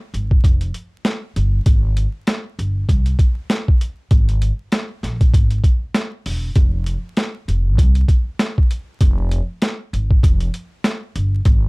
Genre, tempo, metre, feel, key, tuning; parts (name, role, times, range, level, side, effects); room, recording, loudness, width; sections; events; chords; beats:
hip hop, boom-bap hip-hop; 98 BPM; 4/4; swing 59% on 16ths; F minor; A4 = 438 Hz
upright bass; bass; 0.1-11.7 s; E1 to C2; -18 LUFS; equal
boom bap sampler-style drum kit; drums; 0.1-11.6 s; hi-hat, kick drum, snare drum; -15 LUFS; equal
little or no reverb; dark, warm production, vinyl crackle; -16 LUFS; side -32 dB against mid
0.0-11.7 A section
0.43 1.05 | 1.66 2.27 2.88 3.50 | 4.11 4.72 5.33 5.95 | 6.56 7.17 7.78 8.39 | 9.01 9.62 10.23 10.84 | 11.46